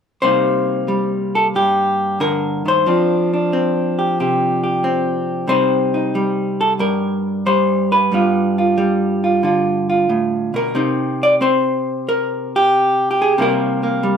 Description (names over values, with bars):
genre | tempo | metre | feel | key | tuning
solo jazz | 91 BPM | 4/4 | swing 69% on 8ths | C minor from 10.7 s | A4 = 440 Hz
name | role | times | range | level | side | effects
vintage hollow-body jazz guitar | solo | 0.2-14.2 s | G2 to D5 | -15 LUFS | equal | none
room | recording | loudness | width
moderate studio reverb, RT60 0.8 s | none | -15 LUFS | side -7 dB against mid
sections
0.2-10.7 A section; 10.7-14.2 B section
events
none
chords
0.2 Cm7; 2.8 Fsus2; 5.5 Cm7; 8.1 G7; 10.7 Cm7; 13.4 C7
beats
| 0.21 0.87 1.53 2.19 | 2.84 3.50 4.16 4.82 | 5.47 6.13 6.79 7.45 | 8.11 8.77 9.43 10.09 | 10.75 11.40 12.06 12.72 | 13.38 14.03